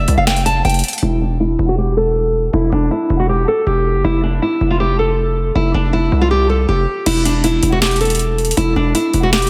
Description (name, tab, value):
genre	hip hop, trap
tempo	159 BPM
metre	4/4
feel	half-time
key	E minor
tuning	A4 = 440 Hz
part	nylon-string guitar	melody	0.0-9.5 s	D4 to A5	-19 LUFS	equal	low-pass filter, analog delay
part	distorted 808-style bass	bass	0.0-9.5 s	E1 to C2	-19 LUFS	equal	distortion
part	trap drum kit	drums	0.1-1.0, 7.1-9.5 s	crash cymbal, hi-hat, snare drum	-22 LUFS	equal	overdrive
room	moderate lush hall reverb, RT60 2.0 s, digital ambience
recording	dreamy mix soaked in reverb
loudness	-16 LUFS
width	mono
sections	0.0-1.0 A section; 1.0-7.1 B section; 7.1-9.5 C section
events	filter sweep on nylon-string guitar 1.0-7.1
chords	0.0 Fsus2; 1.0 Em; 4.0 Fsus2; 7.1 N.C.